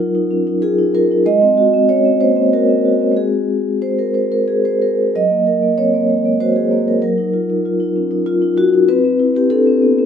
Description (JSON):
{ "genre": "classical, contemporary piece for solo vibraphone", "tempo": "96 BPM", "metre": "3/4", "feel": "rubato", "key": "unclear", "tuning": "A4 = 440 Hz", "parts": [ { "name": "vibraphone with soft mallets", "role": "solo", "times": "0.0-10.1 s", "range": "Gb3 to Eb5", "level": "-13 LUFS", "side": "equal", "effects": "none" } ], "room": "moderate recital hall reverb, RT60 1.4 s", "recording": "close, detailed microphones", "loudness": "-13 LUFS", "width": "side -8 dB against mid", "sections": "0.0-10.1 A section", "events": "none", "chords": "0.0 Ebmadd9/Gb; 1.3 Ab9; 3.2 Ab7; 5.1 Gb69; 7.0 Ebmadd9/Gb; 8.9 Cmaj7", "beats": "0.01 0.63 | 1.26 1.88 2.52 | 3.16 3.81 4.47 | 5.13 5.78 6.40 | 7.02 7.64 8.26 | 8.88 9.50" }